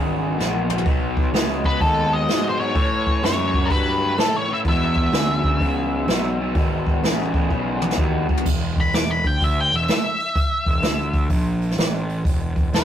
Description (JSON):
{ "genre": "blues rock power trio and southern rock", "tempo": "126 BPM", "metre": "4/4", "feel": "swing 66% on 8ths", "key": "E mixolydian", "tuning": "A4 = 440 Hz", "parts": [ { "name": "raw garage guitar", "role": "riff", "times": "0.0-8.4 s", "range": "E2 to G#3", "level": "-25 LUFS", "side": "left 1 dB", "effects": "overdrive" }, { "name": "fuzz picked electric bass", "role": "bass", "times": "0.0-12.8 s", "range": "E1 to A2", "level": "-24 LUFS", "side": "equal", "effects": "overdrive" }, { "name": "jazz brush drum kit", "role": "drums", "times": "0.4-12.8 s", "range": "crash cymbal, hi-hat, kick drum, snare drum, toms", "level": "-22 LUFS", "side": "equal", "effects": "none" }, { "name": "octave-fuzz lead guitar", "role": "melody", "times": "1.7-12.8 s", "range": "A4 to D6", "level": "-23 LUFS", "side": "left 1 dB", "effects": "distortion" } ], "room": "light reverb", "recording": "rough rehearsal-room recording", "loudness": "-18 LUFS", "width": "side -10 dB against mid", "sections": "0.0-8.5 A section; 8.5-12.8 B section", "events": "drum fill 0.4-0.9, 7.5-8.5; lead electric guitar solo 8.5-12.8", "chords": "0.0 E; 0.9 B; 2.8 A7; 4.7 E7; 8.5 E7(no3)", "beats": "0.39 | 0.86 1.34 1.81 2.29 | 2.76 3.24 3.71 4.19 | 4.66 5.14 5.61 6.09 | 6.56 7.04 7.51 7.99 | 8.46 8.94 9.41 9.88 | 10.36 10.84 11.31 11.79 | 12.26 12.74" }